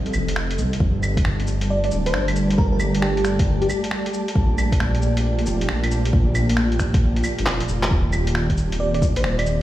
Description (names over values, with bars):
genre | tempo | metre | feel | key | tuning
future garage | 135 BPM | 4/4 | swing 65% on 16ths | G minor | A4 = 439 Hz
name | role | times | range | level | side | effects
ethereal airy pad | sustained chords | 0.0-9.6 s | Bb2 to Eb5 | -27 LUFS | equal | ensemble chorus, built-in reverb, sidechain pumping
dark detuned saw bass | bass | 0.0-9.6 s | D1 to C2 | -22 LUFS | equal | tube saturation, sidechain pumping
lo-fi sampler-style drum kit | drums | 0.1-9.6 s | cabasa, claves, finger snaps, handclaps, hi-hat | -27 LUFS | equal | small room ambience
electronic kick drum | drums | 0.8-9.1 s | none | -20 LUFS | equal | small room ambience
wind-like tuned noise texture | texture | 1.4-7.9 s | A3 to A5 | -33 LUFS | equal | built-in reverb
bell-like FM electric piano | melody | 1.7-3.8, 8.8-9.6 s | G4 to D5 | -26 LUFS | right 1 dB | chorus, phaser, cassette tape, ping-pong delay
room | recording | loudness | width
light reverb, digital ambience | played on a big sound system in a bare room, stone room reverb, vinyl crackle | -18 LUFS | side -14 dB against mid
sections
0.0-7.9 A section; 7.9-9.6 A section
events
drum fill 7.5-7.9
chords
0.0 F7; 0.8 G5; 4.4 Bb6; 7.9 Eb6